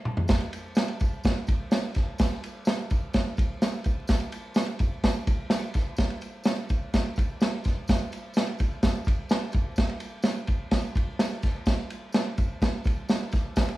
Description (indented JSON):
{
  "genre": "soul",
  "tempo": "127 BPM",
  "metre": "4/4",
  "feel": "straight",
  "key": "none",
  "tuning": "none",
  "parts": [
    { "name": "vintage drum kit", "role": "drums", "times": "0.1-13.8 s", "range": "kick drum, ride cymbal, snare drum, toms", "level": "-24 LUFS", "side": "equal", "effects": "none" },
    { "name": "tambourine", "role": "percussion", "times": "0.3-13.7 s", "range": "none", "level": "-48 LUFS", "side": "left 2 dB", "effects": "none" }
  ],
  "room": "light reverb",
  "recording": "vinyl crackle, studio reverb",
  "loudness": "-24 LUFS",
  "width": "side -17 dB against mid",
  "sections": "0.3-13.8 A section",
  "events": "drum fill 0.0-0.3; band accent 0.0-0.3",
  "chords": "none"
}